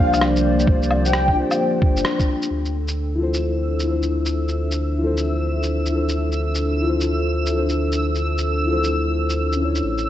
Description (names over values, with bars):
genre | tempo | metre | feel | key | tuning
future garage | 131 BPM | 4/4 | swing 65% on 16ths | D minor | A4 = 440 Hz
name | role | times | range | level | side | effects
breathy flute-like synth lead | melody | 0.0-1.4 s | F5 to G5 | -24 LUFS | left 1 dB | ensemble chorus, tape echo
muted felt-like synth keys | accompaniment | 0.0-10.1 s | C#4 to C#5 | -24 LUFS | left 3 dB | chorus, sidechain pumping, tape echo
dark analog pad | sustained chords | 0.0-10.1 s | F3 to E5 | -25 LUFS | equal | chorus, sidechain pumping
warm sub bass | bass | 0.0-10.1 s | G1 to D2 | -23 LUFS | equal | sidechain pumping
electronic shaker, woodblock and rim click | drums | 0.1-10.0 s | none | -26 LUFS | equal | none
electronic kick drum | drums | 0.7-2.3 s | none | -18 LUFS | equal | none
backwards swelling texture | texture | 3.4-10.1 s | E6 | -30 LUFS | right 2 dB | built-in reverb
room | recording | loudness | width
light reverb, digital ambience | cassette tape, nothing above 7.9 kHz | -18 LUFS | side -12 dB against mid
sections
0.0-2.5 A section; 2.5-10.1 B section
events
band accent 2.0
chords
0.0 Bb6; 2.5 Dm7